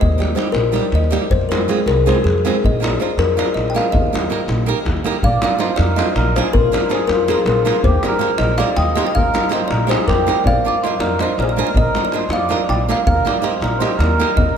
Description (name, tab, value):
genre	balkan folk, Balkan wedding band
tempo	322 BPM (eighths)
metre	7/8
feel	straight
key	Eb major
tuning	A4 = 440 Hz
part	kalimba	melody	0.0-14.6 s	Ab4 to G5	-19 LUFS	left 2 dB	none
part	upright bass	bass	0.0-14.5 s	Bb1 to F2	-20 LUFS	equal	none
part	davul	percussion	0.0-14.5 s	none	-21 LUFS	left 1 dB	none
part	flamenco guitar	accompaniment	0.2-14.3 s	G3 to Bb4	-23 LUFS	right 7 dB	none
part	mellow accordion	second line	5.2-14.6 s	F4 to Eb5	-22 LUFS	right 2 dB	none
room	moderate recital hall reverb, RT60 1.6 s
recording	none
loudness	-14 LUFS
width	side -8 dB against mid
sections	0.0-5.2 A section; 5.2-14.6 B section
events	none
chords	0.0 Eb; 1.3 Fm; 2.6 Bb; 3.9 Eb; 5.2 Bb; 7.8 Eb; 10.5 Bb; 13.1 Eb